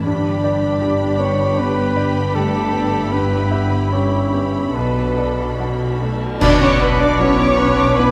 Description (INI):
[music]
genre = cinematic, emotional film score for orchestra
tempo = 72-80 BPM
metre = 4/4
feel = rubato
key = B minor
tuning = A4 = 440 Hz
[part]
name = muted symphonic violin section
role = melody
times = 0.0-8.1 s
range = B5 to D6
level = -33 LUFS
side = equal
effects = none
[part]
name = muted symphonic violin section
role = second line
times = 0.0-8.1 s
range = G4 to D5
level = -27 LUFS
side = equal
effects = none
[part]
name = clear grand piano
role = accompaniment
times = 0.0-8.1 s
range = B1 to E5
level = -26 LUFS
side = equal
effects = none
[part]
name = muted symphonic viola section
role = accompaniment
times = 0.0-8.1 s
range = B3 to D5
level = -31 LUFS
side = equal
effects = none
[part]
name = concert harp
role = arpeggios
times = 0.0-8.1 s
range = G2 to G4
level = -31 LUFS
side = equal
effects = none
[part]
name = muted symphonic double bass section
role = bass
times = 0.0-8.1 s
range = G1 to B1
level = -26 LUFS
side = equal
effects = none
[part]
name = dark cor anglais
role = second line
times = 0.1-8.1 s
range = A4 to D5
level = -26 LUFS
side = equal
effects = none
[part]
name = mellow French horn section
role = sustained chords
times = 0.1-8.1 s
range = A3 to C#5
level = -26 LUFS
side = equal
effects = none
[part]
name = muted symphonic cello section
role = bass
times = 0.1-8.1 s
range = G2 to D4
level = -24 LUFS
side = equal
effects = none
[part]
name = cymbal swell, clash cymbals and concert bass drum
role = percussion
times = 3.1-7.9 s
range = none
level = -26 LUFS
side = equal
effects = none
[part]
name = bright clarinet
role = second line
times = 6.4-8.1 s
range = D4 to F#4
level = -27 LUFS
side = equal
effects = none
[part]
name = mellow concert flute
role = second line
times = 6.4-8.1 s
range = D6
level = -25 LUFS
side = equal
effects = none
[sound]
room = moderate scoring stage reverb, RT60 1.7 s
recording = none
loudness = -17 LUFS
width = mono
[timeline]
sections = 0.0-6.4 A section; 6.4-8.1 B section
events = band accent 6.4-7.2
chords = 0.1 G; 3.1 Em/G; 4.8 Bm7; 6.4 Bm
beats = | 0.07 0.82 1.59 2.36 | 3.13 3.93 4.75 5.59 | 6.41 7.19 7.96